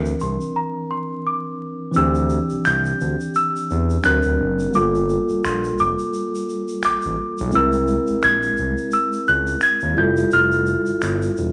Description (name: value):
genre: R&B, neo-soul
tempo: 86 BPM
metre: 4/4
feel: swing 57% on 16ths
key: unclear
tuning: A4 = 443 Hz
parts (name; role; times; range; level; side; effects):
- small celesta; melody; 0.0-11.5 s; Bb5 to G#6; -23 LUFS; equal; none
- tine electric piano; accompaniment; 0.0-11.5 s; E3 to Bb4; -24 LUFS; equal; none
- smooth gliding synth bass; bass; 0.0-11.5 s; E1 to E2; -26 LUFS; equal; none
- tube shaker and finger snaps; percussion; 0.1-11.5 s; none; -34 LUFS; equal; none
room: moderate large studio reverb, RT60 0.9 s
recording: vinyl crackle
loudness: -20 LUFS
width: mono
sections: 0.0-1.9 A section; 1.9-11.5 B section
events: break 0.6-1.9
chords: 0.0 C9; 1.9 D9sus4; 4.0 D7b13; 4.7 Gm9; 7.5 C7b13; 10.0 Fmaj9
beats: 0.55 1.25 | 1.95 2.64 3.34 4.04 | 4.74 5.43 6.13 6.83 | 7.53 8.22 8.92 9.62 | 10.32 11.02